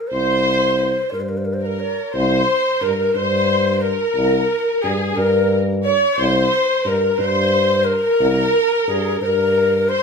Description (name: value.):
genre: Persian modal ensemble.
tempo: 59 BPM (dotted quarters).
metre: 6/8.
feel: straight.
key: C dastgah shur.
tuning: A4 = 439 Hz.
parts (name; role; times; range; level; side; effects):
breathy mellow ney; melody; 0.0-10.0 s; Ab4 to Db5+45c; -19 LUFS; left 1 dB; none.
rich studio violin section; second line; 0.1-10.0 s; Ab4 to Db5+45c; -20 LUFS; right 1 dB; none.
warm tuba; bass; 0.1-10.0 s; C2 to G2; -21 LUFS; equal; none.
room: wet studio reverb, RT60 0.9 s.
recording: band playing live in one room.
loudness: -15 LUFS.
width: side -5 dB against mid.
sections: 0.0-2.1 A section; 2.1-10.0 B section.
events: none.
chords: none.